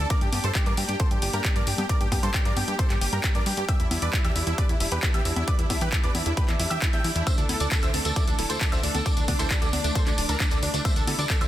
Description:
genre	uplifting trance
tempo	134 BPM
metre	4/4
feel	straight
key	unclear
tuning	A4 = 440 Hz
part	dense compressed supersaw	melody	0.0-11.5 s	D4 to G5	-31 LUFS	right 1 dB	sidechain pumping, tape echo
part	bright grand piano	second line	0.0-11.5 s	D5 to G6	-36 LUFS	equal	sidechain pumping, tape echo
part	dark studio string section	sustained chords	0.0-11.5 s	E3 to D4	-36 LUFS	equal	sidechain pumping
part	plucky analog bass	bass	0.0-11.5 s	D1 to G2	-29 LUFS	equal	sidechain pumping
part	electronic kick drum	drums	0.1-11.4 s	none	-24 LUFS	equal	none
part	punchy analog drum machine	drums	0.1-11.5 s	congas, handclaps, hi-hat	-29 LUFS	left 1 dB	none
part	wide unison pluck	arpeggios	7.3-11.5 s	D3 to A4	-34 LUFS	right 3 dB	sidechain pumping, tape echo
part	tambourine	percussion	7.3-11.5 s	none	-35 LUFS	left 2 dB	none
room	little or no reverb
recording	dense, heavily limited modern master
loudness	-22 LUFS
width	side -13 dB against mid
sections	0.0-11.5 A section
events	none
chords	0.1 Gm; 3.7 Em7; 7.3 Dsus2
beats	| 0.10 0.55 1.00 1.45 | 1.89 2.34 2.79 3.24 | 3.69 4.13 4.58 5.03 | 5.48 5.92 6.37 6.82 | 7.27 7.71 8.16 8.61 | 9.06 9.51 9.95 10.40 | 10.85 11.30

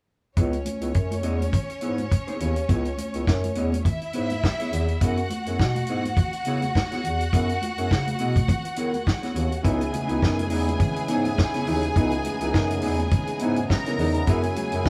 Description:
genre	disco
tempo	104 BPM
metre	4/4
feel	swing 56% on 16ths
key	unclear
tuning	A4 = 440 Hz
part	warm symphonic violin section	second line	0.4-14.9 s	C#4 to A#5	-32 LUFS	equal	none
part	mellow electric guitar	accompaniment	0.4-14.9 s	B3 to D#5	-33 LUFS	equal	none
part	warm bass clarinet	bass	0.4-14.9 s	C#2 to D#3	-30 LUFS	equal	none
part	warm soul drum kit	drums	0.4-14.9 s	hi-hat, kick drum, snare drum	-26 LUFS	equal	none
part	congas	percussion	0.4-14.9 s	none	-37 LUFS	equal	none
part	clear baby grand piano	accompaniment	9.6-14.9 s	C#3 to E4	-32 LUFS	equal	none
part	overdriven tonewheel organ	sustained chords	9.6-14.9 s	C#3 to E4	-33 LUFS	equal	slow rotary speaker
room	moderate studio reverb, RT60 0.6 s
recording	band playing live in one room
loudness	-24 LUFS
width	mono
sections	0.4-14.9 A section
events	none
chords	0.4 C#m7; 5.0 F#9sus4; 9.6 C#m7; 14.3 F#9sus4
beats	| 0.37 0.95 1.53 2.12 | 2.69 3.27 3.85 4.43 | 5.01 5.59 6.17 6.75 | 7.33 7.91 8.49 9.07 | 9.65 10.23 10.80 11.38 | 11.96 12.54 13.12 13.70 | 14.28 14.85

